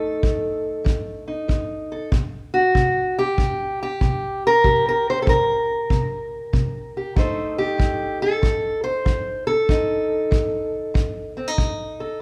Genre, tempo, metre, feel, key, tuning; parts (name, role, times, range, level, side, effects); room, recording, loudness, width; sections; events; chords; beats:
acoustic country blues, solo or duo; 95 BPM; 4/4; swing 68% on 8ths; A4 = 440 Hz
fingerpicked steel-string acoustic guitar; melody; 0.0-12.2 s; C3 to C5; -23 LUFS; equal
kick drum; drums; 0.2-11.8 s; -24 LUFS; equal
light reverb; -22 LUFS; mono
0.0-12.2 A section
0.0 F7; 2.1 C5; 7.2 F7
0.24 0.86 1.49 | 2.12 2.75 3.38 4.01 | 4.64 5.27 5.90 6.53 | 7.16 7.79 8.42 9.05 | 9.68 10.32 10.95 11.58